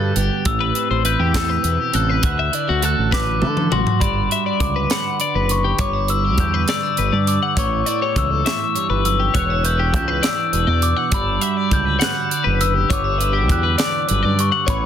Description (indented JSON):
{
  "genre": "math rock and midwest emo",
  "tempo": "68 BPM (dotted quarters)",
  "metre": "6/8",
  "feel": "straight",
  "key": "G lydian from 4.0 s",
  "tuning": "A4 = 440 Hz",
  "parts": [
    { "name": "glockenspiel with rubber mallets", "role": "melody", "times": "0.0-14.9 s", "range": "B5 to A6", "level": "-22 LUFS", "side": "left 2 dB", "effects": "none" },
    { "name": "twelve-string electric guitar", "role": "accompaniment", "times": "0.0-14.9 s", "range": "E2 to G4", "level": "-25 LUFS", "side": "right 10 dB", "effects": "wide subtle chorus" },
    { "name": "twelve-string electric guitar", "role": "arpeggios", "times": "0.0-14.9 s", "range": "F#4 to F#5", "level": "-24 LUFS", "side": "left 11 dB", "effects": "spring reverb" },
    { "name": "growling fingered electric bass", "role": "bass", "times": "0.0-14.9 s", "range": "E1 to D3", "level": "-21 LUFS", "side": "equal", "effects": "overdrive" },
    { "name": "crisp fusion drum kit", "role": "drums", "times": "0.2-14.8 s", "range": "hi-hat, kick drum, snare drum, toms", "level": "-22 LUFS", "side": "right 1 dB", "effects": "none" }
  ],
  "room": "little or no reverb",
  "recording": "dense, heavily limited modern master",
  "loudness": "-16 LUFS",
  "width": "side -9 dB against mid",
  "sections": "0.0-4.0 A section; 4.0-14.9 B section",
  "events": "drum fill 3.1-4.0",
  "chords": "0.5 Am7; 2.2 D; 4.0 Gmaj7; 7.6 A9; 9.4 Em9; 11.1 Gmaj7",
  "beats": "| 0.46 1.34 | 2.23 3.12 | 4.01 4.90 | 5.79 6.68 | 7.57 8.46 | 9.35 10.24 | 11.13 12.02 | 12.90 13.79 | 14.68"
}